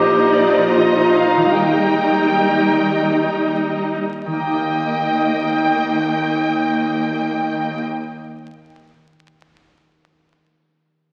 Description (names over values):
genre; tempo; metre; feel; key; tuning
cinematic, emotional film score for orchestra; 63-76 BPM; 3/4; rubato; Eb major; A4 = 444 Hz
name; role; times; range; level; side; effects
rich symphonic violin section; melody; 0.0-7.8 s; C5 to G5; -24 LUFS; equal; none
mellow clarinet; second line; 0.0-7.8 s; Eb4 to G4; -22 LUFS; equal; none
warm symphonic violin section; second line; 0.0-7.8 s; Eb5 to Bb5; -27 LUFS; equal; none
warm symphonic viola section; accompaniment; 0.0-7.8 s; F3 to Eb4; -24 LUFS; equal; none
concert harp; arpeggios; 0.0-8.7 s; Bb2 to G5; -33 LUFS; equal; none
warm symphonic cello section; bass; 0.0-7.8 s; Eb2 to Eb3; -29 LUFS; equal; none
warm symphonic double bass section; bass; 0.0-7.8 s; Bb1 to Eb2; -31 LUFS; equal; none
room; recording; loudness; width
wet scoring stage reverb, RT60 1.9 s; very old 78 rpm record, vinyl crackle; -18 LUFS; mono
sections
0.0-4.3 A section; 4.3-7.1 B section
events
slowing down 0.0-4.3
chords
0.0 Bbsus4; 1.5 Eb